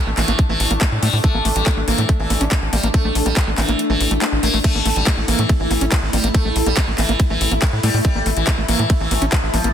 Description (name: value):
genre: psychedelic trance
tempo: 141 BPM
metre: 4/4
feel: straight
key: unclear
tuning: A4 = 440 Hz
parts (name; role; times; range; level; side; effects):
- sitar; melody; 0.0-9.7 s; E3 to Bb3; -23 LUFS; equal; phaser, sidechain pumping, tape echo
- bubbling stepped-filter texture; sustained chords; 0.0-9.7 s; A3 to E4; -25 LUFS; left 1 dB; chorus, built-in reverb, sidechain pumping
- screaming distorted acid line; riff; 0.1-9.7 s; A3 to C#4; -25 LUFS; moving between left 6 dB and right 5 dB; distortion, chorus, auto-pan, sidechain pumping, tape echo
- tight sequencer bass; bass; 0.1-9.7 s; A1 to A2; -20 LUFS; equal; none
- garage drum kit; drums; 0.2-9.7 s; crash cymbal, handclaps, hi-hat, ride cymbal; -24 LUFS; left 2 dB; none
- electronic kick drum; drums; 0.4-9.4 s; none; -16 LUFS; equal; none
room: light reverb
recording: dense, heavily limited modern master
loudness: -15 LUFS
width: side -9 dB against mid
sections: 0.0-9.7 A section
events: kick drops out 3.8-4.6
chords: 0.0 A5